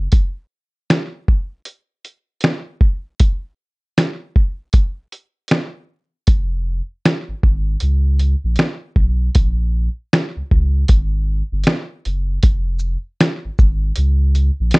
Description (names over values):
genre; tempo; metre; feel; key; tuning
lo-fi hip hop; 78 BPM; 4/4; swing 61% on 16ths; F minor; A4 = 435 Hz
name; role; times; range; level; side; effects
sub bass with octave; bass; 0.0-0.1, 6.3-14.7 s; F1 to Db2; -17 LUFS; equal; none
lo-fi sampler-style drum kit; drums; 0.1-14.8 s; finger snaps, hi-hat, kick drum, shaker, snare drum; -14 LUFS; equal; none
room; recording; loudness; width
little or no reverb; dark, warm production, nothing above 10.6 kHz; -16 LUFS; side -29 dB against mid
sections
0.1-12.4 A section; 12.4-14.8 B section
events
none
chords
none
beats
| 0.12 0.89 1.66 2.43 | 3.20 3.97 4.74 5.51 | 6.28 7.04 7.81 8.58 | 9.35 10.12 10.89 11.66 | 12.43 13.20 13.97 14.74